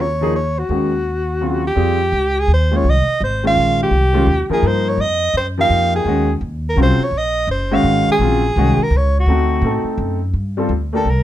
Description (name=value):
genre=modal jazz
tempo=168 BPM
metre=3/4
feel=swing 64% on 8ths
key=F phrygian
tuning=A4 = 440 Hz
part: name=breathy soprano saxophone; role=melody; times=0.0-11.2 s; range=Gb4 to F5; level=-18 LUFS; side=right 1 dB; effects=none
part: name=upright bass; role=bass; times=0.0-11.2 s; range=Gb1 to A2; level=-18 LUFS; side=equal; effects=none
part: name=clear upright piano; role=accompaniment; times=0.2-11.1 s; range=Db3 to Bb4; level=-19 LUFS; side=left 1 dB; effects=none
room=light reverb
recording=none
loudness=-14 LUFS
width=side -12 dB against mid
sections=0.0-1.8 A section; 1.8-10.3 B section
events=none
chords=0.0 Ebm11; 1.8 Fm11; 6.1 Ebm11; 9.3 D7b9; 10.3 Gm11